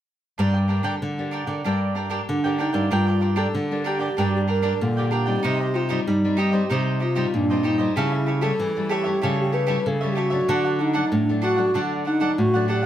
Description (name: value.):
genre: samba.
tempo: 95 BPM.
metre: 4/4.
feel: straight.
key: G minor.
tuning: A4 = 440 Hz.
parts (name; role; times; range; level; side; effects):
cavaquinho; accompaniment; 0.4-12.9 s; D4 to G5; -28 LUFS; right 3 dB; none.
nylon-string guitar; accompaniment; 0.4-12.9 s; G2 to G4; -29 LUFS; left 3 dB; none.
nylon-string guitar; bass; 0.4-12.9 s; G2 to G3; -24 LUFS; equal; none.
mellow hollow wooden-headed alto flute; melody; 2.3-12.9 s; D4 to B4; -24 LUFS; equal; plate reverb.
room: moderate studio reverb, RT60 0.7 s.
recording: heard from further back in the room.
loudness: -20 LUFS.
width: side -11 dB against mid.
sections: 0.4-2.9 A section; 2.9-12.9 B section.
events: none.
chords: 0.4 Gm; 5.4 Cm; 8.0 A7/C#; 10.5 D.